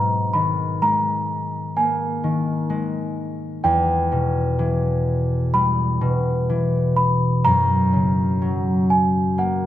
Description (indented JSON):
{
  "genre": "children's music, lullaby",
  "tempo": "63 BPM",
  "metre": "4/4",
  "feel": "rubato",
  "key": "unclear",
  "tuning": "A4 = 445 Hz",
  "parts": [
    { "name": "worn celesta", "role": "melody", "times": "0.0-9.7 s", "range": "F#5 to B5", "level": "-22 LUFS", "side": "right 1 dB", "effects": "none" },
    { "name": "concert harp", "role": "accompaniment", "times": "0.0-9.7 s", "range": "E2 to D#4", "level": "-20 LUFS", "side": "left 1 dB", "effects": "none" }
  ],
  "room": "moderate recital hall reverb, RT60 1.4 s",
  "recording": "dark, warm production",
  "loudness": "-18 LUFS",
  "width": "side -12 dB against mid",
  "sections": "0.0-9.7 A section",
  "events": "none",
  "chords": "0.0 G#sus2; 3.6 Em; 7.5 F#"
}